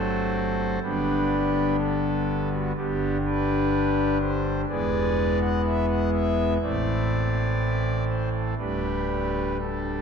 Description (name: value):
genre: classical, chorale-style piece for pipe organ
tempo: 62 BPM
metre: 4/4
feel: rubato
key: G major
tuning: A4 = 440 Hz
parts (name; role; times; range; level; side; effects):
- pipe organ, foundations; solo; 0.0-10.0 s; D1 to F#5; -22 LUFS; equal; none
room: wet church reverb, RT60 3.3 s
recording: nothing above 10.5 kHz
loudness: -22 LUFS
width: side -6 dB against mid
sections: 0.0-10.0 A section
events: none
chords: 0.0 D7/G (rootless); 0.8 G; 4.7 E; 6.6 Am; 8.6 Dsus4